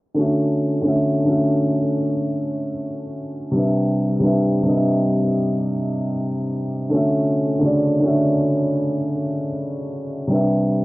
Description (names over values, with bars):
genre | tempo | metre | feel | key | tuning
hip hop | 71 BPM | 4/4 | swing 63% on 16ths | D major | A4 = 442 Hz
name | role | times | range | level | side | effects
felt-muted upright piano | solo | 0.1-10.8 s | C3 to E5 | -18 LUFS | equal | cassette tape, low-pass filter, analog delay
room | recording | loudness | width
wet studio reverb, RT60 0.6 s | worn, warbling old tape, cassette tape, warbly pitch drift, low-pass filter | -18 LUFS | side -20 dB against mid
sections
0.2-10.8 A section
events
filter sweep 0.2-10.8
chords
0.2 Dmaj9; 3.5 Cmaj9; 6.9 Dmaj9; 10.3 Cmaj9